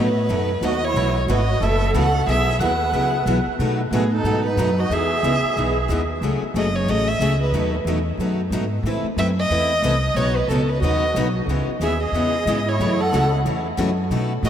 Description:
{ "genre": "acoustic string swing (jazz manouche)", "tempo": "182 BPM", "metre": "4/4", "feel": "swing 61% on 8ths", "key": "unclear", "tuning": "A4 = 440 Hz", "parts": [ { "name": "warm violin", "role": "melody", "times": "0.0-14.5 s", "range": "G#4 to F#5", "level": "-23 LUFS", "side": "right 1 dB", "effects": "none" }, { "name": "picked steel-string acoustic guitar", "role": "accompaniment", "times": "0.0-14.5 s", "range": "B2 to B4", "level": "-26 LUFS", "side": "left 5 dB", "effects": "none" }, { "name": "picked steel-string acoustic guitar", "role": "accompaniment", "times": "0.0-14.5 s", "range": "B2 to B4", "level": "-28 LUFS", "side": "right 4 dB", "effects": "none" }, { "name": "upright bass", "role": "bass", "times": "0.0-14.5 s", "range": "F#1 to B2", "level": "-22 LUFS", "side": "equal", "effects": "none" }, { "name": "musette accordion", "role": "second line", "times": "0.6-5.9, 10.8-14.5 s", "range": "B3 to B4", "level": "-27 LUFS", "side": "right 3 dB", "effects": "none" } ], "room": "wet cathedral reverb, RT60 6.2 s", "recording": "in a vast, echoing space", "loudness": "-18 LUFS", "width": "side -9 dB against mid", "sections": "0.0-6.2 A section; 6.2-14.5 B section", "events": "none", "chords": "0.0 B7; 1.0 B7sus4; 2.3 Eadd9; 3.6 B7; 4.9 Emaj7; 6.2 F#madd9; 7.5 B7; 8.8 Amadd9; 10.2 Badd9; 11.5 C#m7; 12.8 F#m7" }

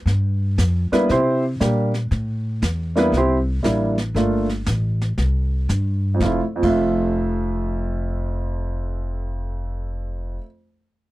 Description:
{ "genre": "jazz piano trio", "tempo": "117 BPM", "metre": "4/4", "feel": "swing 66% on 8ths", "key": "F major", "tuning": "A4 = 439 Hz", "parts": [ { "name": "upright bass", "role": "bass", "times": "0.1-10.4 s", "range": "F1 to C3", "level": "-22 LUFS", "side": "equal", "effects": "none" }, { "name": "vintage brush drum kit", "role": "drums", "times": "0.1-6.7 s", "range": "brushed snare drum, crash cymbal, hi-hat, kick drum, snare drum", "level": "-28 LUFS", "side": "right 1 dB", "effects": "none" }, { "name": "warm upright piano", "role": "melody", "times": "0.9-10.5 s", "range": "F2 to E5", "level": "-21 LUFS", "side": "right 1 dB", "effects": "none" } ], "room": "little or no reverb", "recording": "dry, close 1970s-style studio recording", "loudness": "-19 LUFS", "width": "side -17 dB against mid", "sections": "0.0-6.2 A section; 6.2-10.3 B section", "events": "none", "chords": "0.1 G7(no3); 1.1 C7; 2.1 A5; 3.1 C7; 4.2 Gm9; 5.2 C5; 6.2 Fmaj7" }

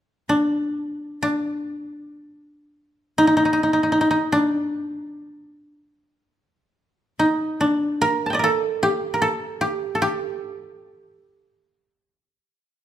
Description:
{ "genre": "japanese traditional", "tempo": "free time", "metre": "none", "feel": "none", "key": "D miyako bushi", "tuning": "A4 = 442 Hz", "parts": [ { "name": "koto", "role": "melody", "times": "0.3-12.1 s", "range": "D4 to A5", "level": "-20 LUFS", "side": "equal", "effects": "none" } ], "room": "moderate recital hall reverb, RT60 1.6 s", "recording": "minimal, uncompressed stereo recording", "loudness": "-19 LUFS", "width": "side -11 dB against mid", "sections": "0.0-7.2 A section; 7.2-12.8 B section", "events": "none", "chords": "none" }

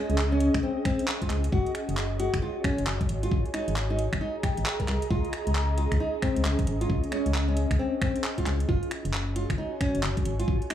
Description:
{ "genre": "UK garage, two-step garage", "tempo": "134 BPM", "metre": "4/4", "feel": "swing 63% on 16ths", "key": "Db major", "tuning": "A4 = 445 Hz", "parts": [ { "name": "nylon-string guitar", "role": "melody", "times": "0.0-10.7 s", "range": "C4 to Bb4", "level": "-31 LUFS", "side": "left 1 dB", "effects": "analog delay" }, { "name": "ethereal airy pad", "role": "texture", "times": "0.0-10.7 s", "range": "Db4 to Bb5", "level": "-32 LUFS", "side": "right 1 dB", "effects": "ensemble chorus, built-in reverb, sidechain pumping" }, { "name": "organ-like FM bass", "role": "bass", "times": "0.1-10.6 s", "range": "Gb1 to Db2", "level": "-27 LUFS", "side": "equal", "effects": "none" }, { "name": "garage drum kit", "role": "drums", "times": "0.1-10.7 s", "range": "finger snaps, handclaps, hi-hat", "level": "-33 LUFS", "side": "equal", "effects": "small room reverb" }, { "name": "electronic kick drum", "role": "drums", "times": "0.5-10.6 s", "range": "none", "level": "-29 LUFS", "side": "equal", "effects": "small room reverb" } ], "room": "light reverb, digital ambience", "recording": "echo-heavy mix, studio ambience", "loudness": "-24 LUFS", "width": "side -10 dB against mid", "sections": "0.0-10.7 A section", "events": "none", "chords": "0.0 Dbsus2; 1.5 Gbsus2; 3.1 Absus2; 5.1 Dbsus2; 8.7 Gbsus2" }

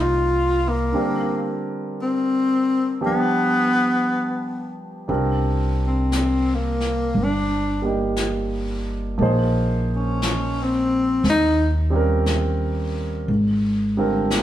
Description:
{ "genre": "jazz ballad", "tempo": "58 BPM", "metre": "4/4", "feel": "swing 67% on 8ths", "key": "C minor", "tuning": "A4 = 441 Hz", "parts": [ { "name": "warm tenor saxophone", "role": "melody", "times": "0.0-14.4 s", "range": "Bb3 to F4", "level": "-20 LUFS", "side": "left 2 dB", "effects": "none" }, { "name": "warm concert grand piano", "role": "accompaniment", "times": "0.0-14.4 s", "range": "D3 to D5", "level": "-25 LUFS", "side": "right 2 dB", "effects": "none" }, { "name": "upright bass", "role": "bass", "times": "0.0-14.4 s", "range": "G1 to Eb2", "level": "-22 LUFS", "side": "equal", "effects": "none" }, { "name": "jazz brush drum kit", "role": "drums", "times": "5.1-14.4 s", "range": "brushed snare drum, hi-hat, snare drum", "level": "-31 LUFS", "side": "left 2 dB", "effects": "none" } ], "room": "wet large studio reverb, RT60 1.3 s", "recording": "band playing live in one room", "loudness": "-19 LUFS", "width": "side -12 dB against mid", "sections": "0.0-5.1 A section; 5.1-14.4 B section", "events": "tenor saxophone solo 5.1-14.4", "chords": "0.0 Cm7; 1.0 Bb69/D; 3.0 G7; 5.1 Cm11; 9.2 Bbsus2; 11.2 Eb13; 13.3 Abmaj7" }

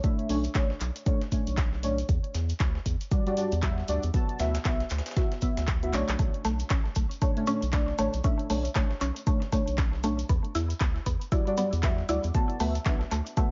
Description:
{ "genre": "deep house", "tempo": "117 BPM", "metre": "4/4", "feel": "swing 59% on 16ths", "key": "B minor", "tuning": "A4 = 440 Hz", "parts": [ { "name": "deep mellow chord stab", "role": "stabs", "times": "0.0-13.5 s", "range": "G3 to A5", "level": "-33 LUFS", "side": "equal", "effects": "chorus, phaser, cassette tape, sidechain pumping, delay" }, { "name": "deep house drum kit", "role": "drums", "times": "0.0-13.5 s", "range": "handclaps, hi-hat", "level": "-40 LUFS", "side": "equal", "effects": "none" }, { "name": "dusty soul sampler-style drum kit", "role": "drums", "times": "0.0-13.5 s", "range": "hi-hat, shaker, snare drum", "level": "-48 LUFS", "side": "equal", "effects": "none" }, { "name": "electronic kick drum", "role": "drums", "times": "0.0-13.5 s", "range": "none", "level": "-29 LUFS", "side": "equal", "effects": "none" }, { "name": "cabasa", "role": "percussion", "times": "0.0-13.5 s", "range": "none", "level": "-48 LUFS", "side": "equal", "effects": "none" }, { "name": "round analog bass", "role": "bass", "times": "0.3-13.2 s", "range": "A1 to E2", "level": "-33 LUFS", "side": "equal", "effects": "sidechain pumping" }, { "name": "mallet-like synth pluck", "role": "arpeggios", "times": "6.2-13.5 s", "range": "A3 to E4", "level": "-36 LUFS", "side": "equal", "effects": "chorus, sidechain pumping, delay" } ], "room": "light reverb", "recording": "nothing above 7.4 kHz", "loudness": "-28 LUFS", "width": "mono", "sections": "0.0-13.5 A section", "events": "drum fill 5.9", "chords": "0.0 Bm9; 2.1 Em9; 4.1 D69; 6.2 Bm9; 10.3 Em9; 12.3 D69" }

